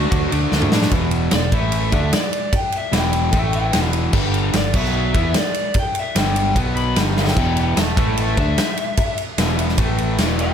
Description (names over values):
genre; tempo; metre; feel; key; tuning
hard rock; 149 BPM; 4/4; straight; E minor; A4 = 440 Hz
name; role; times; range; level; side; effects
lead guitar through a small cranked amp; melody; 0.0-10.5 s; F#4 to B5; -25 LUFS; left 2 dB; overdrive, digital delay
crunchy overdriven guitar; riff; 0.0-10.5 s; E2 to E4; -22 LUFS; equal; none
fingered electric bass; bass; 0.0-10.5 s; E1 to A2; -22 LUFS; equal; none
huge arena drum kit; drums; 0.1-10.5 s; crash cymbal, kick drum, ride cymbal, snare drum, toms; -20 LUFS; equal; none
room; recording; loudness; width
light reverb; none; -16 LUFS; side -8 dB against mid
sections
0.9-10.5 A section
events
drum fill 0.5-0.9, 7.2; lead electric guitar solo 0.9-10.5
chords
0.0 D; 0.9 E5; 1.5 A5; 1.9 Em; 3.3 A5; 3.7 E5; 4.1 G5; 4.7 B5; 5.1 G5; 6.6 B5; 7.0 G5; 7.4 E5; 8.0 A5; 8.4 E5; 9.8 A5